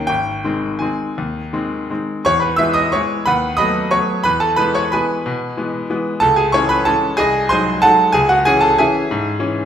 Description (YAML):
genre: classical, piano waltz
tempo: 161-205 BPM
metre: 3/4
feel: rubato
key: E major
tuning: A4 = 440 Hz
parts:
  - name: bright grand piano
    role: solo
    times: 0.0-9.7 s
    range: Ab1 to E6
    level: -14 LUFS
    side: equal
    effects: none
room: wet recital hall reverb, RT60 1.4 s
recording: heard from further back in the room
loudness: -14 LUFS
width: side -9 dB against mid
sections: 0.0-2.3 A section; 2.3-9.7 B section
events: none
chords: 0.1 Ab; 2.3 E; 3.3 B7/D#; 4.3 E; 6.2 C#m; 7.2 G#7/B#; 8.2 C#m